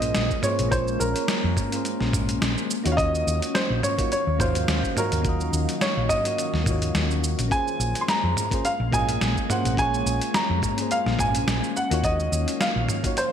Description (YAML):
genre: sunset chillout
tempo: 106 BPM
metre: 4/4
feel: swing 55% on 16ths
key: Bb minor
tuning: A4 = 440 Hz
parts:
  - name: dark grand piano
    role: melody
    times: 0.0-13.3 s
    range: Bb4 to C6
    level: -26 LUFS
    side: equal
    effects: digital delay
  - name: soft electric-piano-like synth keys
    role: accompaniment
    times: 0.0-13.2 s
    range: Bb3 to F5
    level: -31 LUFS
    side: moving between left 5 dB and right 5 dB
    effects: chorus, auto-pan, digital delay
  - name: ethereal airy pad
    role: sustained chords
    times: 0.0-13.3 s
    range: Eb3 to F5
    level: -31 LUFS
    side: left 2 dB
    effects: ensemble chorus, built-in reverb
  - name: hollow-body short-scale fingered electric bass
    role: bass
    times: 0.0-12.9 s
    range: Bb1 to F2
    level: -26 LUFS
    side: equal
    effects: none
  - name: dusty soul sampler-style drum kit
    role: drums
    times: 0.0-13.3 s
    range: cabasa, hi-hat, snare drum, toms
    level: -27 LUFS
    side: equal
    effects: gated reverb
  - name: electronic kick drum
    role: drums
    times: 0.3-13.1 s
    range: none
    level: -28 LUFS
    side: equal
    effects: none
room: moderate plate reverb, RT60 2.0 s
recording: bright 1980s-style digital production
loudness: -21 LUFS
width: side -8 dB against mid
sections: 0.0-13.3 A section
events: none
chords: 0.0 Bbm9; 2.7 Ebm9; 7.5 Bbm9; 11.8 Ebm9